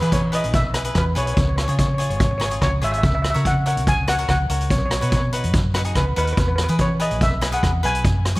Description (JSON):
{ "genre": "calypso", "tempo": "144 BPM", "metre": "4/4", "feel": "straight", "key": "E major", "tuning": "A4 = 440 Hz", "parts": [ { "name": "steel pan", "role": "melody", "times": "0.0-8.4 s", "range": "B4 to G#5", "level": "-24 LUFS", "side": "equal", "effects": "ping-pong delay" }, { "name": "cavaquinho", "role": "accompaniment", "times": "0.0-8.4 s", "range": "D#4 to C#5", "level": "-29 LUFS", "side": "left 2 dB", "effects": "none" }, { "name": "hollow-body short-scale fingered electric bass", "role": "bass", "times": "0.0-8.4 s", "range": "G#1 to F#3", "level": "-22 LUFS", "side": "equal", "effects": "none" }, { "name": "street-band drum kit", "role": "drums", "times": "0.0-8.4 s", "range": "hi-hat, kick drum, rim click", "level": "-22 LUFS", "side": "equal", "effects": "none" } ], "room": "light reverb, studio ambience", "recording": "rough home demo mix", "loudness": "-17 LUFS", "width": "side -20 dB against mid", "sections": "0.0-8.4 A section", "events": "none", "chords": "0.0 E; 1.4 C#; 3.0 F#/C#; 4.7 Badd9; 6.4 E" }